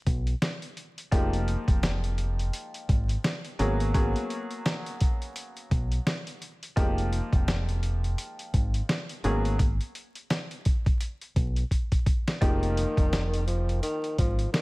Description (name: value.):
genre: hip hop, boom-bap hip-hop.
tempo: 85 BPM.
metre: 4/4.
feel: swing 59% on 16ths.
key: F minor.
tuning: A4 = 437 Hz.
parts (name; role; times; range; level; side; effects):
deep dub fingered electric bass; bass; 0.1-14.5 s; F1 to Cb2; -27 LUFS; equal; none.
dusty soul sampler-style drum kit; drums; 0.1-14.6 s; hi-hat, kick drum, snare drum; -27 LUFS; equal; none.
clear upright piano; accompaniment; 1.1-14.6 s; F3 to Ab4; -33 LUFS; left 1 dB; cassette tape, high-pass filter, low-pass filter.
breathy tenor saxophone; melody; 12.4-14.6 s; Eb3 to F3; -31 LUFS; equal; high-pass filter, low-pass filter, tape echo.
room: small room reverb.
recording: vinyl crackle.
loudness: -25 LUFS.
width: side -22 dB against mid.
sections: 0.0-12.4 A section; 12.4-14.6 B section.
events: break 0.0-1.1; drum fill 11.7-12.4.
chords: 0.0 N.C.; 1.1 Fm11; 3.6 Abm11; 6.8 Fm11; 9.2 Abm11; 12.4 Fm11.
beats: 0.42 | 1.12 1.83 2.53 3.24 | 3.94 4.65 5.36 6.06 | 6.77 7.47 8.18 8.89 | 9.59 10.30 11.00 11.71 | 12.42 13.12 13.83 14.53.